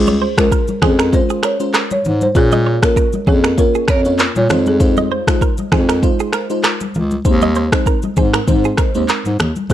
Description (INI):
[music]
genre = afrobeats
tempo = 98 BPM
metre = 4/4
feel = swing 55% on 16ths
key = unclear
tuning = A4 = 441 Hz
[part]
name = folk marimba with medium mallets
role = melody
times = 0.0-4.8, 9.7 s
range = Ab4 to Db5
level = -19 LUFS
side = equal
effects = analog delay
[part]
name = FM electric piano with soft pad layer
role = accompaniment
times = 0.0-9.7 s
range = Ab3 to Db5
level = -20 LUFS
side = equal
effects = chorus
[part]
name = mellow bass clarinet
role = bass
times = 0.0-9.7 s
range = Db2 to Bb2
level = -17 LUFS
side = equal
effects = none
[part]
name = direct-recorded clean electric guitar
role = riff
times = 0.1-9.3 s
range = Ab4 to Eb5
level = -23 LUFS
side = right 8 dB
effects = wide subtle chorus, analog delay
[part]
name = afro-pop drum kit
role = drums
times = 0.1-9.7 s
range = finger snaps, handclaps, kick drum, rim click, shaker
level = -16 LUFS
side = equal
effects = vintage 12-bit sampler grit
[part]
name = congas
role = percussion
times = 0.1-9.7 s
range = none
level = -22 LUFS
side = left 2 dB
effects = none
[sound]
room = digital ambience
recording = dry, gritty hardware recording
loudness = -12 LUFS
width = side -12 dB against mid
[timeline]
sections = 0.0-9.7 A section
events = none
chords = 0.0 Dbmaj7; 2.4 Bbm; 4.5 Fm7; 7.2 Ab/Eb